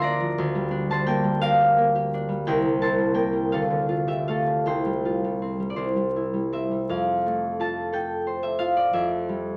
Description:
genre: classical, solo harp piece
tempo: 52-60 BPM (dotted quarters)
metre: 6/8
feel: rubato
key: F major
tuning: A4 = 440 Hz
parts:
  - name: concert harp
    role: solo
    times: 0.0-9.6 s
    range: C2 to D6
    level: -24 LUFS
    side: equal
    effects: none
room: light reverb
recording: vinyl crackle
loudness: -24 LUFS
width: mono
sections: 0.0-6.9 A section; 6.9-9.6 B section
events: none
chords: 0.4 Gm7/D; 2.4 C7; 3.5 Dm; 4.6 Csus4; 5.8 C; 6.9 F; 8.9 C/F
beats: | 0.39 1.41 | 2.44 3.50 | 4.63 5.77 | 6.90 7.93 | 8.94

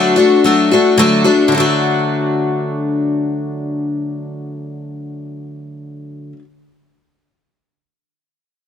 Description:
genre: rock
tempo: free time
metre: none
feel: none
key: D major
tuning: A4 = 440 Hz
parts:
  - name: picked twelve-string acoustic guitar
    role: solo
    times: 0.0-6.4 s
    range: D3 to F#4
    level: -14 LUFS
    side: left 2 dB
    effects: none
room: moderate echo chamber reverb, RT60 1.9 s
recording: none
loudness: -12 LUFS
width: side -8 dB against mid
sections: 0.0-1.5 A section; 1.5-5.9 B section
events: none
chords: 0.0 D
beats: free time

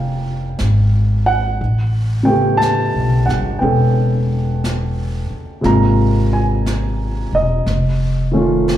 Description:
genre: jazz ballad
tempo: 59 BPM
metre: 4/4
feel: swing 66% on 8ths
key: unclear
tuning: A4 = 440 Hz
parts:
  - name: warm grand piano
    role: accompaniment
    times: 0.0-8.8 s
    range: C3 to Bb5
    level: -18 LUFS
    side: right 1 dB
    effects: slapback echo
  - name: upright bass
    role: bass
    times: 0.0-8.8 s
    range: E1 to B1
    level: -17 LUFS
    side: equal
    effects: none
  - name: jazz brush drum kit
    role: drums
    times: 0.6-8.8 s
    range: brushed snare drum, hi-hat, snare drum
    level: -30 LUFS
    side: equal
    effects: none
room: little or no reverb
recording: live gig heard through the venue's PA, club reverb, faint mains hum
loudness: -14 LUFS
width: side -12 dB against mid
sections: 0.0-8.8 A section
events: none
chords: 0.0 Bbm9; 1.6 A9; 5.6 Ab69; 7.7 Faug7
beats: 0.58 | 1.59 2.60 3.62 4.63 | 5.64 6.65 7.66 8.67

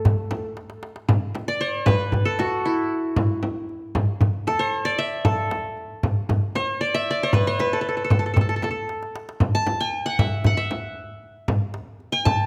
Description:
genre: Arabic maqam ensemble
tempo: 115 BPM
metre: 4/4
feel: straight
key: A maqam rast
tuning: A4 = 440 Hz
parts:
  - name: qanun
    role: melody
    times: 0.0-12.5 s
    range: E4 to A5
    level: -26 LUFS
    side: equal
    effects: none
  - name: soft octave-layered synth lead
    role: second line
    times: 0.0-0.5 s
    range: A4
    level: -36 LUFS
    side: equal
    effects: chorus, tape echo
  - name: darbuka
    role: percussion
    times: 0.1-12.4 s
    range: none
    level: -27 LUFS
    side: equal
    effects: none
  - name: frame drum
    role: percussion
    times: 0.1-12.4 s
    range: none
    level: -26 LUFS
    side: equal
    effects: none
room: moderate recital hall reverb, RT60 1.6 s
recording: close, detailed microphones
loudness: -23 LUFS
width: mono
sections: 0.0-1.1 A section; 1.1-12.5 B section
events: drum fill 0.6-1.1, 8.9-9.4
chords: none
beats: 0.04 0.56 | 1.08 1.60 2.12 2.65 | 3.17 3.69 4.21 4.73 | 5.25 5.77 6.29 6.81 | 7.33 7.85 8.37 8.89 | 9.41 9.93 10.45 10.96 | 11.48 12.00

